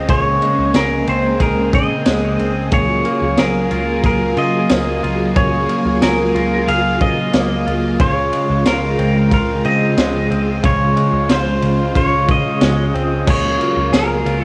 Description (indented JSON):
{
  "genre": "dream pop",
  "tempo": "91 BPM",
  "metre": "4/4",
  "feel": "straight",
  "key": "unclear",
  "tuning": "A4 = 441 Hz",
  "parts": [
    { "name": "pedal steel guitar", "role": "melody", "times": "0.0-14.4 s", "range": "Bb4 to F5", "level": "-22 LUFS", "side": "equal", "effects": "cassette tape, analog delay, plate reverb" },
    { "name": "string machine, violins", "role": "sustained chords", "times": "0.0-14.4 s", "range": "Db3 to Ab4", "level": "-21 LUFS", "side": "equal", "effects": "ensemble chorus, cassette tape" },
    { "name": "direct-recorded clean electric guitar", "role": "arpeggios", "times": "0.0-14.4 s", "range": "Db3 to Ab4", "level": "-26 LUFS", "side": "equal", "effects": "subtle chorus, cassette tape, analog delay, plate reverb" },
    { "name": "vintage muted picked electric bass", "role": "bass", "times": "0.0-14.4 s", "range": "Db2 to Db3", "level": "-25 LUFS", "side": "equal", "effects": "none" },
    { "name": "raw garage drum kit", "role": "drums", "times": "0.1-14.4 s", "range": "crash cymbal, kick drum, ride cymbal, snare drum, tambourine", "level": "-22 LUFS", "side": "equal", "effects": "none" }
  ],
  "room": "moderate booth ambience, RT60 0.2 s",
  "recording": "home recording on cassette",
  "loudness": "-16 LUFS",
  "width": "mono",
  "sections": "0.0-13.3 A section; 13.3-14.4 A section",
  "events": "none",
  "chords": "0.1 Bbm9/Db; 2.7 Gbmaj9/Db; 8.0 Dbmaj7; 13.3 Gbmaj9/Db"
}